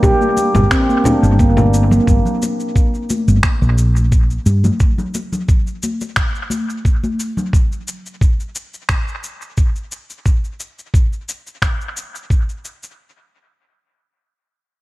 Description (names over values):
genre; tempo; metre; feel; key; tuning
organic downtempo; 88 BPM; 4/4; swing 53% on 16ths; G minor; A4 = 442 Hz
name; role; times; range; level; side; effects
handpan; arpeggios; 0.0-2.1 s; Bb3 to G4; -17 LUFS; equal; vintage 12-bit sampler grit, tape echo
electronic congas, cabasa and finger snaps; drums; 0.0-13.0 s; none; -22 LUFS; left 1 dB; studio reverb, dub echo
electronic kick drum; drums; 0.0-12.4 s; none; -15 LUFS; equal; studio reverb
congas; percussion; 0.2-7.5 s; none; -23 LUFS; left 2 dB; none
woody fretless electric bass; bass; 0.6-4.7 s; G1 to G2; -13 LUFS; equal; sidechain pumping
room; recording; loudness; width
light reverb, small room ambience; echo-heavy mix; -14 LUFS; side -18 dB against mid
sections
0.0-2.1 A section; 2.1-13.0 B section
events
none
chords
0.0 Gm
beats
0.03 0.71 1.39 | 2.07 2.75 3.44 4.12 | 4.80 5.48 6.16 6.85 | 7.53 8.21 8.89 9.57 | 10.26 10.94 11.62 12.30